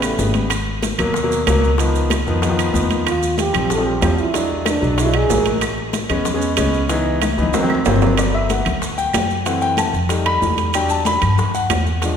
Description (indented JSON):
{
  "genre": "Afro-Cuban jazz",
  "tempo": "188 BPM",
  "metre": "4/4",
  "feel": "straight",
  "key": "G major from 8.2 s",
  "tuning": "A4 = 442 Hz",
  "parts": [
    { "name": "breathy trombone", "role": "melody", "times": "0.0-0.3, 3.1-5.5 s", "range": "A3 to A4", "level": "-22 LUFS", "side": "right 3 dB", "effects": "none" },
    { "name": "warm concert grand piano", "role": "accompaniment", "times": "0.0-12.2 s", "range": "B2 to B5", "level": "-20 LUFS", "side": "left 1 dB", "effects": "none" },
    { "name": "upright bass", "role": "bass", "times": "0.0-12.2 s", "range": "G1 to G2", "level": "-21 LUFS", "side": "equal", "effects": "none" },
    { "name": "bongos", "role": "percussion", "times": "0.0-12.2 s", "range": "none", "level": "-29 LUFS", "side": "left 5 dB", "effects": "none" },
    { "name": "claves", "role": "percussion", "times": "0.0-11.9 s", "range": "none", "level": "-30 LUFS", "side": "right 4 dB", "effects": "none" },
    { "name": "congas", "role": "percussion", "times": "0.0-12.2 s", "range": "none", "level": "-26 LUFS", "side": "left 3 dB", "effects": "none" },
    { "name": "maracas", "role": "percussion", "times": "0.0-12.2 s", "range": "none", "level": "-31 LUFS", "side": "right 6 dB", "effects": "none" },
    { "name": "timbales", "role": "percussion", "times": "0.0-12.2 s", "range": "none", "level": "-26 LUFS", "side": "right 6 dB", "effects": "none" }
  ],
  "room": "wet scoring stage reverb, RT60 2.0 s",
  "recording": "recorded in a church or concert hall",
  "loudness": "-15 LUFS",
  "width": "side -8 dB against mid",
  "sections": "0.0-8.2 A section; 8.2-12.2 B section",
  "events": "drum fill 7.2-8.2; grand piano solo 8.2-12.2",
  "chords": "0.0 A9; 0.5 G#m9; 1.8 C#9; 3.1 D#69; 4.3 E7; 5.6 Amaj9; 6.9 C#m9; 7.5 Daug7; 8.2 Gmaj9; 9.5 F#m7b5; 10.1 F9; 10.7 Em9",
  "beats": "0.18 | 0.51 0.82 1.15 1.47 | 1.78 2.10 2.42 2.75 | 3.06 3.38 3.71 4.02 | 4.34 4.66 4.98 5.30 | 5.62 5.94 6.26 6.58 | 6.90 7.22 7.54 7.86 | 8.18 8.50 8.82 9.14 | 9.46 9.78 10.10 10.42 | 10.74 11.06 11.38 11.70 | 12.02"
}